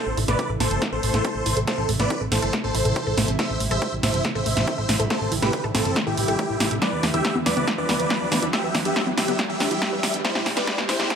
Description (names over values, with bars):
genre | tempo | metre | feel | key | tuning
uplifting trance | 140 BPM | 4/4 | straight | A minor | A4 = 439 Hz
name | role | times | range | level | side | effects
big supersaw lead | melody | 0.0-11.1 s | C4 to E5 | -25 LUFS | equal | phaser, vintage 12-bit sampler grit, sidechain pumping, tape echo
analog string pad | sustained chords | 0.0-11.2 s | C3 to G4 | -31 LUFS | right 3 dB | ensemble chorus, sidechain pumping
riser | sound effects | 3.5-11.2 s | none | -33 LUFS | equal | none
plucky analog bass | bass | 0.1-11.1 s | G1 to E2 | -28 LUFS | equal | sidechain pumping
wide unison pluck | arpeggios | 0.2-11.0 s | G3 to E5 | -33 LUFS | left 1 dB | none
punchy analog drum machine | drums | 0.2-11.2 s | congas, hi-hat, snare drum | -25 LUFS | equal | none
electronic kick drum | drums | 0.4-11.2 s | none | -31 LUFS | equal | high-pass filter on kick, high-pass filter on room
room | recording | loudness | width
light reverb, digital ambience | high-pass filter | -20 LUFS | side -7 dB against mid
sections
0.0-11.2 A section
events
build-up 0.0-11.2; drum fill 0.0-11.2; riser 3.5-11.2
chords
0.0 Am; 6.8 Em7; 10.2 C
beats
0.39 0.82 1.25 | 1.68 2.10 2.53 2.96 | 3.39 3.82 4.25 4.67 | 5.10 5.53 5.96 6.39 | 6.82 7.25 7.67 8.10 | 8.53 8.96 9.39 9.82 | 10.25 10.68 11.10